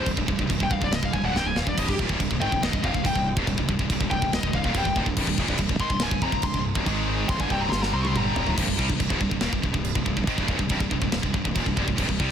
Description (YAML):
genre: heavy metal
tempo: 141 BPM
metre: 4/4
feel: straight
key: C minor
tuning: A4 = 440 Hz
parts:
  - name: high-gain lead guitar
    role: melody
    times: 0.0-8.5 s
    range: G4 to Db6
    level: -29 LUFS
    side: left 2 dB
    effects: distortion, digital delay
  - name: heavy high-gain guitar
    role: riff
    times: 0.0-12.3 s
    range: C2 to C4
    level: -31 LUFS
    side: left 12 dB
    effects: distortion
  - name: heavy high-gain guitar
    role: riff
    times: 0.0-12.3 s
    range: C2 to C4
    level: -30 LUFS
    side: right 10 dB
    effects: distortion
  - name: heavy high-gain guitar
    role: riff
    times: 0.0-12.3 s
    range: C2 to C4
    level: -32 LUFS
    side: right 1 dB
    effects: distortion
  - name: fuzz fingered electric bass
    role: bass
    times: 0.0-12.3 s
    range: C1 to C2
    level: -29 LUFS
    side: equal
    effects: overdrive
  - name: tight metal drum kit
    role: drums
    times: 0.1-12.3 s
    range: china cymbal, crash cymbal, kick drum, snare drum, toms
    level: -28 LUFS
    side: equal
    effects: none
room: light reverb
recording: dense, heavily limited modern master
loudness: -22 LUFS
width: side -8 dB against mid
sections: 0.0-8.6 A section; 8.6-12.3 B section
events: lead electric guitar solo 0.0-8.6; drum fill 1.3-1.8, 7.7-8.6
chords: 0.0 Cm; 6.9 Ab5; 7.3 C5; 8.6 Cm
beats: | 0.07 0.50 0.92 1.35 | 1.77 2.19 2.62 3.04 | 3.47 3.90 4.32 4.75 | 5.17 5.60 6.02 6.45 | 6.87 7.30 7.72 8.15 | 8.57 9.00 9.42 9.85 | 10.28 10.70 11.13 11.55 | 11.98